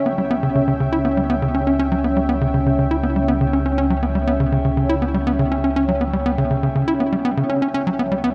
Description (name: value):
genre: ambient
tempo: 121 BPM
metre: 4/4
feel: straight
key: unclear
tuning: A4 = 440 Hz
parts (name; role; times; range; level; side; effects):
- sweeping resonant pad; sustained chords; 0.0-8.3 s; C#4 to G5; -24 LUFS; equal; chorus
- analog drone; bass; 0.4-8.3 s; C#2; -28 LUFS; equal; chorus
- tight sequencer bass; riff; 0.1-8.3 s; C#3 to E4; -22 LUFS; equal; analog delay
room: moderate plate reverb, RT60 3.1 s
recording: dark, warm production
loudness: -19 LUFS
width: mono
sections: 0.0-8.3 A section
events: none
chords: 0.0 C#dim